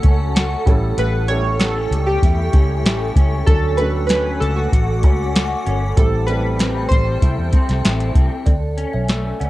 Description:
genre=indie pop, bedroom pop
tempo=96 BPM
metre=4/4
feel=straight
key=D major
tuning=A4 = 440 Hz
part: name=chorused retro synth keys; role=melody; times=0.0-8.1 s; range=F#4 to C#5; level=-23 LUFS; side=right 1 dB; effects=analog chorus
part: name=dark upright piano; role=accompaniment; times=0.0-8.5 s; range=F#3 to A4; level=-28 LUFS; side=right 2 dB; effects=cassette tape
part: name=electric guitar through a small old amp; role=accompaniment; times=0.0-9.5 s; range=A2 to F#4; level=-26 LUFS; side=left 4 dB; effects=ensemble chorus, vibrato effect
part: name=granular cloud pad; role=sustained chords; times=0.0-8.4 s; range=A4 to D6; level=-29 LUFS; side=equal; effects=built-in reverb
part: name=vintage muted fingered electric bass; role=bass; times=0.0-9.5 s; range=G1 to E2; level=-20 LUFS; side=equal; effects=none
part: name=soft vintage rhythm box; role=drums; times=0.0-9.5 s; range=hi-hat, kick drum, snare drum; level=-15 LUFS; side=equal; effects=none
part: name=kalimba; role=second line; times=8.5-9.5 s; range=A4 to F#5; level=-27 LUFS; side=right 4 dB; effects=wide subtle chorus, analog delay
room=light reverb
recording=cassette tape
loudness=-15 LUFS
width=side -16 dB against mid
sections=0.0-8.5 A section; 8.5-9.5 B section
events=none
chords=0.0 Dmaj7; 0.7 A7; 3.5 Dmaj7; 6.0 Am7; 8.5 Dmaj7(no3)

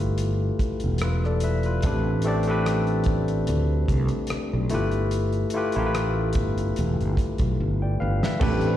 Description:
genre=R&B, neo-soul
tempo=73 BPM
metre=4/4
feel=swing 55% on 16ths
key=unclear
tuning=A4 = 440 Hz
part: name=barky tine electric piano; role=accompaniment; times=0.0-8.8 s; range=A3 to G5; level=-26 LUFS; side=left 3 dB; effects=overdrive, slapback echo
part: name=fretless electric bass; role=bass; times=0.0-8.8 s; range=E1 to D2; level=-24 LUFS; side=right 1 dB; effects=none
part: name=damped 70s drum kit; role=drums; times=0.0-8.8 s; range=crash cymbal, hi-hat, kick drum, rim click, snare drum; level=-27 LUFS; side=equal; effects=none
part: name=vintage hollow-body jazz guitar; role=second line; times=8.4-8.6 s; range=A3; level=-31 LUFS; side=right 10 dB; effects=slapback echo
part: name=soft string machine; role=sustained chords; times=8.5-8.8 s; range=G3 to B4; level=-28 LUFS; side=equal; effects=ensemble chorus
room=little or no reverb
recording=live gig heard through the venue's PA, recital hall reverb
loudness=-22 LUFS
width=side -12 dB against mid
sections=0.0-8.4 A section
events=drum fill 7.6-8.4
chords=0.0 G13; 1.8 Am11; 4.7 G13

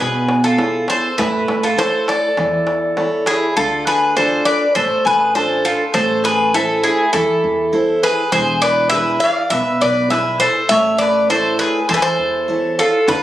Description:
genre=greek folk, Greek bouzouki band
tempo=101 BPM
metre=4/4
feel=straight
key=unclear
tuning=A4 = 440 Hz
part: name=Greek bouzouki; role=melody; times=0.0-13.2 s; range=G#4 to F5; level=-16 LUFS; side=equal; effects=none
part: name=mandolin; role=second line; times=0.0-13.2 s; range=E4 to D5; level=-20 LUFS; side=left 1 dB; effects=none
part: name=picked steel-string acoustic guitar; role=accompaniment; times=0.0-13.2 s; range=B2 to C#5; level=-21 LUFS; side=right 2 dB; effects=none
part: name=upright bass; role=bass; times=0.0-13.2 s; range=E1 to E2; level=-31 LUFS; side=equal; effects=none
part: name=darbuka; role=percussion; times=0.3-3.5, 13.1-13.2 s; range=none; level=-25 LUFS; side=equal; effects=none
room=moderate plate reverb, RT60 2.5 s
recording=recorded on a phone in the room, studio reverb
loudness=-14 LUFS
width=side -13 dB against mid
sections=0.0-3.6 A section; 3.6-13.2 B section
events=none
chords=0.0 E; 1.2 A; 3.6 Dm; 5.9 Am; 8.3 E; 10.7 A

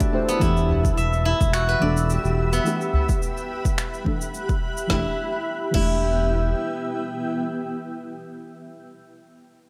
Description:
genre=organic downtempo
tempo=107 BPM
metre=4/4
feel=swing 54% on 16ths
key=E minor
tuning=A4 = 440 Hz
part: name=deep mellow chord stab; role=accompaniment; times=0.0-9.7 s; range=E3 to C6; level=-30 LUFS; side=equal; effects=chorus, sidechain pumping, tape echo
part: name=granular cloud pad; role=sustained chords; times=0.0-7.9 s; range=B3 to F#6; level=-32 LUFS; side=equal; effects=built-in reverb, sidechain pumping
part: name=steel-string zither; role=arpeggios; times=0.0-8.4 s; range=B3 to E5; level=-29 LUFS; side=equal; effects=tape echo
part: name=afro-pop drum kit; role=drums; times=0.0-5.9 s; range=crash cymbal, finger snaps, hi-hat, shaker, snare drum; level=-35 LUFS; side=equal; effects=none
part: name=electronic kick drum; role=drums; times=0.0-5.9 s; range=none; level=-27 LUFS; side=equal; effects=overdrive
part: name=smooth gliding synth bass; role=bass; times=0.4-6.5 s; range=E1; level=-25 LUFS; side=equal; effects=sidechain pumping
part: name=udu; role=percussion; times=0.7-3.1 s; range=none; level=-26 LUFS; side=equal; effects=none
room=light reverb, digital ambience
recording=none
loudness=-23 LUFS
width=mono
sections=0.4-4.9 A section; 4.9-7.1 B section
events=filter sweep on synth stab 0.4-4.9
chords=0.4 Em

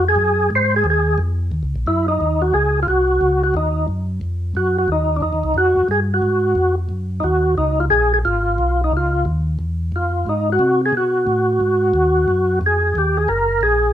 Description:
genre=soul jazz organ trio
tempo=179 BPM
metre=4/4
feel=swing 64% on 8ths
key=Ab mixolydian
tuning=A4 = 440 Hz
part: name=percussive tonewheel organ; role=melody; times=0.0-13.9 s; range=D4 to C5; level=-16 LUFS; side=equal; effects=slow rotary speaker, overdrive, chorus vibrato
part: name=mellow tonewheel organ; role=bass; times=0.0-13.9 s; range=Gb1 to C3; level=-20 LUFS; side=equal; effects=slow rotary speaker
room=light reverb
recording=minimal, uncompressed stereo recording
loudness=-16 LUFS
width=side -11 dB against mid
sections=0.0-2.2 A section; 2.2-13.9 B section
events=tonewheel organ solo 0.0-2.2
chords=0.0 Ab5; 1.5 Ebm7; 2.2 Ab7; 7.6 Db7#9; 10.3 Ab7#9; 12.9 Ebm

